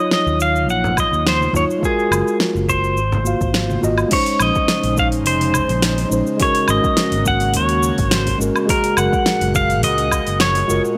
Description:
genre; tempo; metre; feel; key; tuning
sunset chillout; 105 BPM; 4/4; swing 53% on 16ths; unclear; A4 = 440 Hz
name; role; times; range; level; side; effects
pedal steel guitar; melody; 0.0-10.8 s; Ab4 to Gb5; -22 LUFS; equal; analog delay
mellow tine electric piano; accompaniment; 0.0-11.0 s; Gb3 to F5; -23 LUFS; equal; none
smooth R&B drum kit; drums; 0.1-11.0 s; crash cymbal, hi-hat, shaker, snare drum, woodblock; -24 LUFS; equal; none
fingered electric bass; bass; 0.3-10.8 s; F1 to Eb2; -23 LUFS; equal; tube saturation
congas; percussion; 0.8-4.0 s; none; -29 LUFS; equal; none
electronic kick drum; drums; 1.0-10.2 s; none; -26 LUFS; equal; none
airy breathy pad; sustained chords; 4.1-11.0 s; Bb2 to Gb5; -29 LUFS; equal; chorus
room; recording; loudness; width
little or no reverb; dry, gritty hardware recording; -17 LUFS; mono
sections
0.0-4.1 A section; 4.1-11.0 B section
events
none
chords
0.0 Ebm9; 1.8 Gbmaj9; 3.0 Ab13; 4.1 Bbm11; 6.4 Ab9sus4; 8.7 Gbmaj9

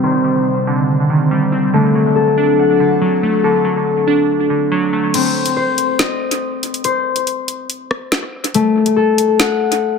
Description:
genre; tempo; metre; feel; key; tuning
hip hop, drill; 141 BPM; 4/4; half-time; unclear; A4 = 435 Hz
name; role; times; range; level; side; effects
glassy digital keys; accompaniment; 0.0-5.2 s; D3 to D4; -16 LUFS; right 4 dB; chorus, low-pass filter, analog delay
airy breathy pad; sustained chords; 0.0-5.1 s; C3 to C5; -20 LUFS; left 1 dB; chorus, low-pass filter
concert harp; arpeggios; 0.0-10.0 s; A3 to F#5; -16 LUFS; left 6 dB; low-pass filter, analog delay
drill drum kit; drums; 5.1-9.8 s; crash cymbal, hi-hat, rim click, snare drum; -19 LUFS; left 1 dB; analog delay
room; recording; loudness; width
moderate spring reverb, RT60 2.0 s; echo-heavy mix; -13 LUFS; side -5 dB against mid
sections
0.0-5.1 A section; 5.1-10.0 B section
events
filter sweep 0.0-5.1; break 5.1-10.0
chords
0.0 Cmadd9; 1.7 D; 5.1 Cm; 8.5 F#m/A

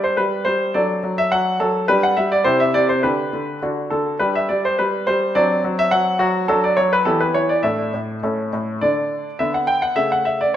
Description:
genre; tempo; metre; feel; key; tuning
classical-period piano sonatina; 104 BPM; 2/4; straight; G major, D major from 6.5 s; A4 = 440 Hz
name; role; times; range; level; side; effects
clear grand piano; solo; 0.0-10.6 s; A2 to G5; -17 LUFS; equal; none
room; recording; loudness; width
wet recital hall reverb, RT60 1.3 s; none; -17 LUFS; side -10 dB against mid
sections
0.0-8.8 A section; 8.8-10.6 B section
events
none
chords
0.0 G5; 0.7 D/F#; 1.9 G5; 2.5 C; 3.0 G/D; 3.6 D; 4.2 G5; 5.4 D7/F#; 6.5 D/F#; 7.1 Em; 7.6 Asus4; 8.2 A; 8.8 N.C.; 9.4 D69; 10.0 A/C#

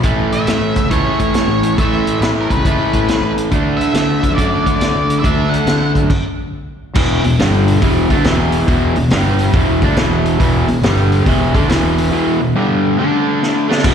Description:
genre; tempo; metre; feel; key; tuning
blues rock power trio and southern rock; 140 BPM; 4/4; swing 66% on 8ths; unclear; A4 = 435 Hz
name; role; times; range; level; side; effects
overdriven semi-hollow guitar; riff; 0.0-13.9 s; E2 to D4; -15 LUFS; equal; slapback echo
fuzz fingered electric bass; bass; 0.0-13.9 s; E1 to D3; -18 LUFS; equal; overdrive
vintage drum kit; drums; 0.0-13.9 s; crash cymbal, hi-hat, kick drum, snare drum; -18 LUFS; equal; none
octave-fuzz lead guitar; melody; 0.3-5.9 s; A#4 to F#5; -21 LUFS; equal; distortion, slapback echo
room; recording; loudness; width
small room reverb; live gig heard through the venue's PA, recital hall reverb; -12 LUFS; side -8 dB against mid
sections
0.0-7.0 A section; 7.0-13.8 B section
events
stop 6.1-7.0; drum fill 13.4-13.8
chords
0.0 A; 3.5 D5; 7.0 E5; 7.4 G5; 7.8 E5; 9.1 G5; 9.5 E5; 10.8 G5; 11.3 E5; 12.5 G5; 13.0 D5

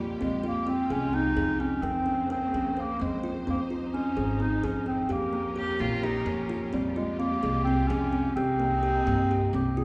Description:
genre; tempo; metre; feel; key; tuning
contemporary instrumental, chamber music in an uneven meter; 258 BPM (eighths); 7/8; straight; F minor; A4 = 439 Hz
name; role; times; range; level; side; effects
dark clarinet; melody; 0.0-9.8 s; G3 to Ab4; -32 LUFS; equal; none
clear symphonic string section; sustained chords; 0.0-9.8 s; C3 to C5; -42 LUFS; equal; none
kalimba; arpeggios; 0.0-9.8 s; Bb3 to Bb4; -32 LUFS; equal; none
upright bass; bass; 0.0-9.8 s; Ab1 to G2; -35 LUFS; equal; none
rich cello; second line; 5.6-6.6 s; Db4 to G4; -38 LUFS; equal; none
room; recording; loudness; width
wet church reverb, RT60 3.9 s; recorded in a church or concert hall; -28 LUFS; mono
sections
0.0-9.8 A section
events
none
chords
0.2 Fmadd9; 1.8 Bbmadd9/F; 3.5 Dbmaj7; 5.1 Bbm6; 6.7 Fmadd9; 8.4 Cm7

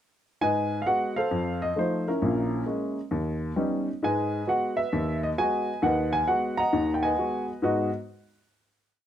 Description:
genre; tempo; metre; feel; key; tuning
solo jazz; 133 BPM; 4/4; swing 65% on 8ths; G# minor; A4 = 440 Hz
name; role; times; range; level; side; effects
warm upright piano; solo; 0.4-7.9 s; A#1 to A#5; -24 LUFS; equal; none
room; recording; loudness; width
light reverb; dark, warm production; -24 LUFS; side -10 dB against mid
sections
0.4-7.6 A section; 7.6-9.1 final chord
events
none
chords
0.4 G#m7; 1.3 F7; 2.2 A#m7b5; 3.1 D#aug7; 4.0 G#m7

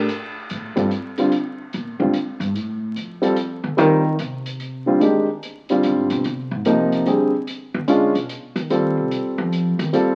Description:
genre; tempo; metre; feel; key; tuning
jazz, small-group swing and bop; 146 BPM; 3/4; swing 65% on 8ths; F mixolydian; A4 = 440 Hz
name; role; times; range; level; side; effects
warm grand piano; accompaniment; 0.0-10.2 s; C3 to Bb4; -21 LUFS; equal; none
upright bass; bass; 0.0-9.9 s; F2 to F3; -26 LUFS; equal; none
hi-hat; drums; 0.1-10.1 s; none; -37 LUFS; equal; none
room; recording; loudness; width
moderate large studio reverb, RT60 1.1 s; very old 78 rpm record, vinyl crackle; -21 LUFS; mono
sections
0.1-10.2 A section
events
upright bass solo 0.1-10.2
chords
0.1 Fadd9; 1.3 Bb9; 2.5 F; 3.8 Cm7; 4.6 Fsus2; 5.0 Bb9; 7.5 Bdim7 (rootless); 8.7 F9

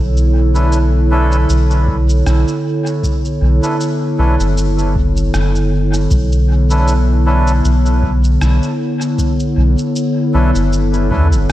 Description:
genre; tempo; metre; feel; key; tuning
ambient dub; 78 BPM; 4/4; swing 55% on 16ths; B minor; A4 = 440 Hz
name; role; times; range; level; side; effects
warbly tape-like pad; sustained chords; 0.0-11.5 s; D3 to C#5; -17 LUFS; equal; chorus, built-in reverb
soft dub sub bass; bass; 0.0-11.5 s; F#1 to E2; -13 LUFS; equal; tube saturation
electronic shaker and rim click; drums; 0.2-11.5 s; none; -28 LUFS; equal; studio reverb, dub echo
melodica; stabs; 0.5-11.3 s; C#4 to B4; -23 LUFS; equal; dub echo
electronic kick drum; drums; 1.9-11.3 s; none; -20 LUFS; equal; none
room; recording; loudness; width
light reverb, digital ambience; none; -12 LUFS; side -14 dB against mid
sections
0.0-11.5 A section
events
none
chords
0.0 Bm11

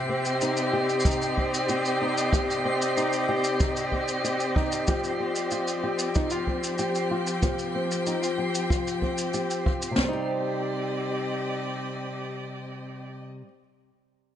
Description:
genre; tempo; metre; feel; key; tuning
folktronica; 94 BPM; 4/4; straight; C minor; A4 = 440 Hz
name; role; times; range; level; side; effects
rich string quartet; sustained chords; 0.0-13.2 s; F3 to G5; -29 LUFS; equal; none
flamenco guitar; arpeggios; 0.0-13.6 s; C3 to G4; -28 LUFS; left 1 dB; low-pass filter, ping-pong delay
twinkling granular texture; texture; 0.0-10.0 s; C7; -38 LUFS; right 3 dB; built-in reverb
shaker; drums; 0.3-9.9 s; none; -35 LUFS; equal; none
jazz brush drum kit; drums; 1.1-10.1 s; kick drum, snare drum; -26 LUFS; equal; none
room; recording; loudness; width
moderate echo chamber reverb, RT60 1.8 s, small room ambience; nothing above 10.9 kHz; -24 LUFS; side -10 dB against mid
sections
0.0-10.0 A section; 10.0-12.5 B section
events
filter sweep on nylon-string guitar 0.0-10.0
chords
0.0 Cm; 4.9 Fsus2; 10.0 Cm

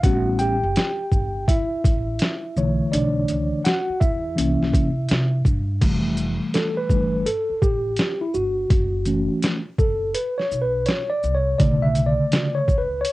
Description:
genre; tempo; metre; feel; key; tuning
hip hop, jazz-hop; 83 BPM; 4/4; swing 64% on 16ths; unclear; A4 = 442 Hz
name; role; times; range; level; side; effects
mellow tine electric piano; accompaniment; 0.0-13.1 s; C#3 to G5; -22 LUFS; equal; medium stereo tremolo, cassette tape
upright bass; bass; 0.0-13.0 s; F1 to C3; -25 LUFS; equal; none
boom bap sampler-style drum kit; drums; 0.0-13.1 s; crash cymbal, hi-hat, kick drum, shaker, snare drum; -21 LUFS; equal; cassette tape
room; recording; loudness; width
light reverb; home recording on cassette; -19 LUFS; side -18 dB against mid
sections
0.0-5.8 A section; 5.8-13.1 B section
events
tine electric piano solo 0.0-5.8, 5.8-13.1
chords
0.0 A9; 2.6 Bm11; 4.4 C7b9; 5.8 Fmaj9; 8.7 F#m7; 11.6 Bm9

